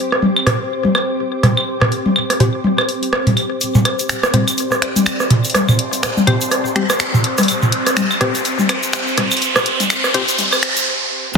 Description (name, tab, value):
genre	minimal techno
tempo	124 BPM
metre	4/4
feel	swing 58% on 16ths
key	unclear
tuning	A4 = 440 Hz
part	bubbling stepped-filter texture	texture	0.0-10.9 s	C5	-30 LUFS	left 2 dB	chorus, built-in reverb, sidechain pumping
part	ethereal airy pad	texture	0.0-11.4 s	C4 to D6	-24 LUFS	equal	ensemble chorus, built-in reverb, sidechain pumping
part	booming analog drum machine	percussion	0.1-11.4 s	claves, rim click, toms	-16 LUFS	equal	soft clipping on snare, small room reverb, ping-pong delay
part	filtered dub chord stab	stabs	0.5-10.2 s	C4 to C5	-24 LUFS	left 5 dB	chorus, ping-pong delay
part	house drum kit	drums	0.5-11.4 s	finger snaps, hi-hat	-21 LUFS	left 1 dB	small room reverb, soft clipping on snare
part	egg shaker	percussion	3.6-10.8 s	none	-27 LUFS	right 2 dB	none
part	riser and downlifter	sound effects	5.4-11.4 s	none	-21 LUFS	right 1 dB	none
room	moderate digital room reverb, RT60 1.2 s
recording	dense, heavily limited modern master, high-pass filter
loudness	-14 LUFS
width	side -5 dB against mid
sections	0.0-3.6 A section; 3.6-11.4 B section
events	filter sweep on synth stab 0.0-3.6; build-up 3.6-11.4; filter sweep 3.6-11.4; riser 5.4-10.9; break 10.9-11.4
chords	0.0 C5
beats	0.23 0.71 1.19 | 1.68 2.16 2.64 3.13 | 3.61 4.10 4.58 5.06 | 5.55 6.03 6.51 7.00 | 7.48 7.97 8.45 8.94 | 9.42 9.90 10.39 10.87 | 11.35